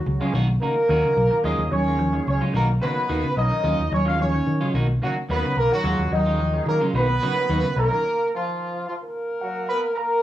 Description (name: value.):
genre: afrobeat.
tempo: 109 BPM.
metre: 4/4.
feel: straight.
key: unclear.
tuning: A4 = 440 Hz.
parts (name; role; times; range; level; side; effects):
mellow horn section; melody; 0.0-10.2 s; Eb3 to F5; -23 LUFS; equal; cassette tape, plate reverb.
mellow tine electric piano; second line; 0.0-10.2 s; Eb5 to F6; -30 LUFS; equal; medium stereo tremolo, plate reverb.
semi-hollow electric guitar; arpeggios; 0.0-8.0 s; Db3 to Gb3; -29 LUFS; left 2 dB; analog delay.
clean electric guitar; stabs; 0.1-8.0 s; D#3 to F#4; -29 LUFS; right 3 dB; plate reverb.
fingered electric bass; bass; 0.1-7.9 s; B1 to Eb3; -23 LUFS; equal; none.
percussive tonewheel organ; accompaniment; 0.2-8.0 s; Gb3 to F4; -36 LUFS; equal; overdrive, fast rotary speaker, plate reverb.
room: moderate booth ambience, RT60 0.3 s.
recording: home recording on cassette, small room ambience.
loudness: -20 LUFS.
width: side -13 dB against mid.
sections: 0.0-10.2 A section.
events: stop 8.0-10.2.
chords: 0.3 Bmaj7; 1.4 Ebm11; 2.5 Bmaj7; 3.6 Ebm11; 4.7 Bmaj7; 5.8 Ebm11; 6.9 Bmaj7; 8.0 N.C..